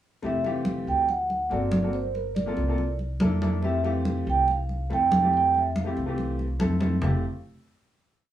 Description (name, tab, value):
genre	Afro-Cuban jazz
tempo	142 BPM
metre	4/4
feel	straight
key	F major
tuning	A4 = 439 Hz
part	warm concert grand piano	accompaniment	0.2-7.2 s	E3 to A4	-30 LUFS	left 2 dB	none
part	upright bass	bass	0.2-7.2 s	F1 to F2	-29 LUFS	equal	none
part	congas	percussion	0.2-7.1 s	none	-28 LUFS	equal	none
part	vibraphone with soft mallets	melody	0.3-7.2 s	Bb4 to G5	-26 LUFS	right 4 dB	none
room	moderate studio reverb, RT60 0.6 s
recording	heard from further back in the room, small room ambience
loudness	-23 LUFS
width	side -11 dB against mid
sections	0.2-7.0 A section; 7.0-8.3 final chord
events	none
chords	0.2 Fmaj9; 1.1 D7b13; 1.9 Gm11; 2.8 C13; 3.6 Fmaj9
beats	| 0.24 0.66 1.09 1.51 | 1.94 2.36 2.79 3.21 | 3.63 4.06 4.48 4.91 | 5.33 5.75 6.18 6.60 | 7.03